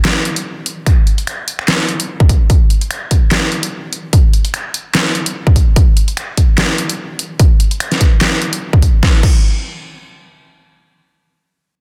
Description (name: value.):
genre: dubstep.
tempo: 147 BPM.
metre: 4/4.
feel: swing 55% on 16ths, half-time.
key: none.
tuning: none.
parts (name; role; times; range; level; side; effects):
dubstep drum kit; drums; 0.0-9.3 s; crash cymbal, finger snaps, handclaps, hi-hat, snare drum; -19 LUFS; equal; none.
electronic kick drum; drums; 0.9-9.3 s; none; -12 LUFS; equal; none.
room: light reverb.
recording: dense, heavily limited modern master.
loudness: -14 LUFS.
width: mono.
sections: 0.0-9.0 A section; 9.0-10.7 B section.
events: drop 0.0-9.0.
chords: none.